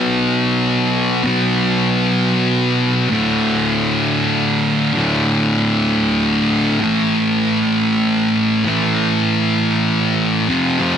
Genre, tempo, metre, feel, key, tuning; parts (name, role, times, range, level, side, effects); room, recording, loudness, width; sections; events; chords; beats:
rock; 65 BPM (dotted quarters); 6/8; straight; A4 = 440 Hz
thick fuzz guitar; solo; 0.0-11.0 s; D2 to B3; -14 LUFS; equal; distortion
wet small room reverb, RT60 0.6 s; dense, heavily limited modern master; -14 LUFS; side -8 dB against mid
0.0-10.5 A section
0.0 B5; 3.1 D5; 6.8 A5
0.33 | 1.25 2.18 | 3.10 4.03 | 4.96 5.88 | 6.81 7.73 | 8.65 9.58 | 10.50